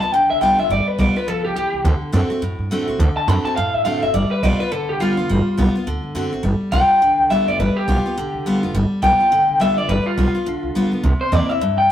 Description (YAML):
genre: rockabilly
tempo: 209 BPM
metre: 4/4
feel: swing 60% on 8ths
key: G mixolydian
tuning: A4 = 440 Hz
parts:
  - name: electric guitar through a small old amp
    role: melody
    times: 0.0-11.9 s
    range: F4 to B5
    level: -18 LUFS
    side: left 1 dB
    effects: slapback echo
  - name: picked steel-string acoustic guitar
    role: accompaniment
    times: 0.0-11.9 s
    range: G2 to F#4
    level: -21 LUFS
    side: equal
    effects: none
  - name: upright bass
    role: bass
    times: 0.0-11.9 s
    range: F1 to G2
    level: -21 LUFS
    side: right 1 dB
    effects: none
room: light reverb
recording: rough rehearsal-room recording, tube saturation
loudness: -16 LUFS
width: side -10 dB against mid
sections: 0.0-6.4 A section; 6.4-11.9 B section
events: clean electric guitar solo 6.4-11.9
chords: 0.0 G7; 1.8 D7; 4.1 G7; 5.9 D7; 6.4 G7; 11.0 C7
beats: 0.13 0.41 | 0.70 0.99 1.28 1.56 | 1.85 2.14 2.42 2.71 | 3.00 3.29 3.57 3.86 | 4.15 4.43 4.72 5.01 | 5.29 5.58 5.87 6.16 | 6.44 6.73 7.02 7.31 | 7.59 7.88 8.17 8.46 | 8.74 9.03 9.32 9.60 | 9.89 10.18 10.46 10.75 | 11.04 11.32 11.61 11.90